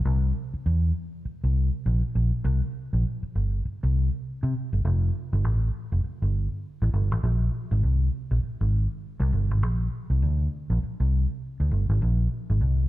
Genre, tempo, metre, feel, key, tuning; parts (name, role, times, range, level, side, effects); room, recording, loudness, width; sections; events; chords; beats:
funk; 100 BPM; 4/4; swing 60% on 16ths; C mixolydian; A4 = 440 Hz
vintage muted fingered electric bass; solo; 0.0-12.9 s; F1 to C3; -23 LUFS; equal
moderate echo chamber reverb, RT60 2.0 s; dark, warm production; -23 LUFS; side -16 dB against mid
0.0-4.9 A section; 4.9-12.9 B section
| 0.07 0.67 1.26 1.86 | 2.46 3.06 3.66 4.25 | 4.85 5.45 6.04 6.64 | 7.24 7.84 8.43 9.03 | 9.63 10.22 10.82 11.42 | 12.02 12.62